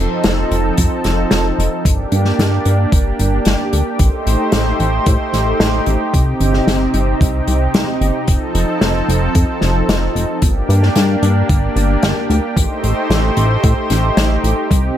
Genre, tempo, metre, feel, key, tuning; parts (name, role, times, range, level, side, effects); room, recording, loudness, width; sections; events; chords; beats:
synthwave; 112 BPM; 4/4; straight; A4 = 441 Hz
lush unison pad; sustained chords; 0.0-15.0 s; C3 to C5; -18 LUFS; right 1 dB; chorus, sidechain pumping
chorused synth bass; bass; 0.0-14.9 s; F1 to A2; -16 LUFS; equal
unplugged drum kit; drums; 0.2-14.8 s; hi-hat, snare drum; -19 LUFS; left 2 dB
electronic kick drum; drums; 0.8-14.8 s; -14 LUFS; equal; overdrive
light reverb, small room ambience; -13 LUFS; side -11 dB against mid
0.0-15.0 A section
0.0 F7; 1.9 Gm; 4.0 Am7b5; 6.1 Cm; 8.3 F7; 10.4 Gm; 12.6 Am7b5
0.24 0.78 1.32 | 1.85 2.39 2.92 3.46 | 3.99 4.53 5.07 5.60 | 6.14 6.67 7.21 7.74 | 8.28 8.82 9.35 9.89 | 10.42 10.96 11.49 12.03 | 12.57 13.10 13.64 14.17 | 14.71